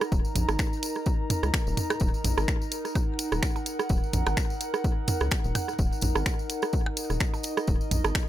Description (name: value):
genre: minimal techno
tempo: 127 BPM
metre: 4/4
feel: swing 56% on 16ths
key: Eb minor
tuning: A4 = 440 Hz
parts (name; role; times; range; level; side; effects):
- minimal click drum kit; percussion; 0.0-8.3 s; percussion blips, rim click, toms; -29 LUFS; right 4 dB; ping-pong delay
- tambourine; percussion; 0.0-8.3 s; none; -39 LUFS; left 3 dB; none
- warbly tape-like pad; texture; 0.0-8.3 s; Eb4 to Bb5; -33 LUFS; equal; chorus, built-in reverb, sidechain pumping
- rubbery square bass; bass; 0.1-8.1 s; Eb1 to Db2; -28 LUFS; left 1 dB; sidechain pumping
- electronic kick drum; drums; 0.1-8.3 s; none; -27 LUFS; equal; none
- garage drum kit; drums; 0.4-8.3 s; finger snaps, hi-hat; -30 LUFS; equal; overdrive
room: little or no reverb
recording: none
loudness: -25 LUFS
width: side -13 dB against mid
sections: 0.0-8.3 A section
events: none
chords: 0.0 Ebm